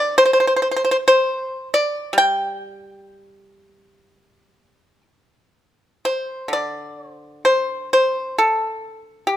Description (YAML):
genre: chinese traditional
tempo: 55-69 BPM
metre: 4/4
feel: rubato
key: unclear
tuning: A4 = 440 Hz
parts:
  - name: pipa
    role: solo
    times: 0.0-9.4 s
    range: D3 to G5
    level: -17 LUFS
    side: equal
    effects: none
room: light reverb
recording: close, detailed microphones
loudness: -17 LUFS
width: side -12 dB against mid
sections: 0.0-6.0 A section; 6.0-9.4 B section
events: none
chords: none